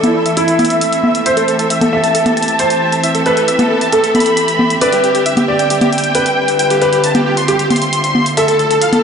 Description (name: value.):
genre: uplifting trance.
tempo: 135 BPM.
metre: 4/4.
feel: straight.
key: A minor.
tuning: A4 = 442 Hz.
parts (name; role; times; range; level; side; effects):
dense compressed supersaw; melody; 0.0-9.0 s; E4 to C6; -16 LUFS; equal; vintage 12-bit sampler grit, low-pass filter, analog delay.
warm grand piano; second line; 0.0-8.9 s; E4 to E5; -15 LUFS; equal; lush chorus, analog delay.
rich symphonic string section; sustained chords; 0.0-9.0 s; D3 to E5; -20 LUFS; equal; none.
electronic hi-hat and congas; drums; 0.0-9.0 s; none; -17 LUFS; equal; overdrive.
riser; sound effects; 8.4-9.0 s; none; barely audible; none; none.
room: wet lush hall reverb, RT60 1.5 s.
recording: dreamy mix soaked in reverb, nothing above 10.5 kHz.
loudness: -11 LUFS.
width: side -6 dB against mid.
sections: 0.0-9.0 A section.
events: filter sweep on supersaw synth 0.0-9.0.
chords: 0.0 Am; 4.8 Gsus4; 8.4 Dmadd9.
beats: 0.37 0.81 | 1.26 1.70 2.15 2.59 | 3.04 3.48 3.93 4.37 | 4.82 5.26 5.70 6.15 | 6.59 7.04 7.48 7.93 | 8.37 8.81.